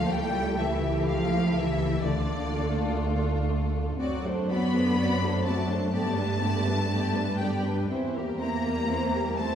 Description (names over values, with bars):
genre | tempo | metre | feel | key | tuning
classical, slow romantic movement for string orchestra | 61 BPM | 4/4 | rubato | unclear | A4 = 440 Hz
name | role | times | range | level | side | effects
warm symphonic violin section | melody | 0.0-9.6 s | D5 to B5 | -32 LUFS | left 4 dB | none
rich symphonic violin section | second line | 0.0-9.6 s | D4 to D5 | -34 LUFS | left 1 dB | none
dark symphonic viola section | accompaniment | 0.0-9.6 s | D3 to E4 | -32 LUFS | equal | none
warm symphonic cello section | bass | 0.0-9.6 s | D3 to B3 | -30 LUFS | right 1 dB | none
warm symphonic double bass section | bass | 0.0-9.6 s | C#2 to G2 | -29 LUFS | right 1 dB | none
room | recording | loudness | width
wet scoring stage reverb, RT60 1.5 s | heard from further back in the room | -24 LUFS | side -9 dB against mid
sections
0.0-9.6 A section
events
none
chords
0.1 A7/C#; 2.0 Dm; 4.0 D7/F#; 5.9 G; 7.9 C7/E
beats
| 0.09 1.07 2.05 3.00 | 3.99 4.98 5.93 6.91 | 7.90 8.89